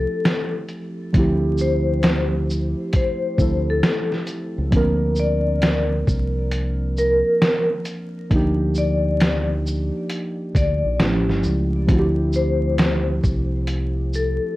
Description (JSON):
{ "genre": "lo-fi hip hop", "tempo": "67 BPM", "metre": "4/4", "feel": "swing 64% on 16ths", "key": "D minor", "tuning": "A4 = 440 Hz", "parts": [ { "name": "vibraphone with medium mallets", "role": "melody", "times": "0.0-14.6 s", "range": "A4 to D5", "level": "-24 LUFS", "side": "left 2 dB", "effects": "low-pass filter, tape echo, plate reverb" }, { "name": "muted felt-like synth keys", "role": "accompaniment", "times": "0.0-14.6 s", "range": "F3 to Bb4", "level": "-24 LUFS", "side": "right 1 dB", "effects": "chorus, cassette tape, low-pass filter" }, { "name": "deep dub fingered electric bass", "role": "bass", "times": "0.0-14.4 s", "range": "G1 to D2", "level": "-22 LUFS", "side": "equal", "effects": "none" }, { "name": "lo-fi sampler-style drum kit", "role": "drums", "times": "0.3-14.4 s", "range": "hi-hat, kick drum, shaker, snare drum", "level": "-21 LUFS", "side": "equal", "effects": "vintage 12-bit sampler grit" } ], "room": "moderate studio reverb, RT60 0.5 s", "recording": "worn, warbling old tape, cassette tape, vinyl crackle, warbly pitch drift", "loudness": "-18 LUFS", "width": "side -17 dB against mid", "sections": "0.0-14.6 A section", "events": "none", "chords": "0.0 Dm11; 4.7 Bbadd9; 8.3 Ebmaj7/D; 11.0 A7b13; 11.9 Dm11", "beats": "0.24 | 1.14 2.04 2.93 3.83 | 4.72 5.62 6.51 7.41 | 8.30 9.20 10.10 10.99 | 11.89 12.78 13.68" }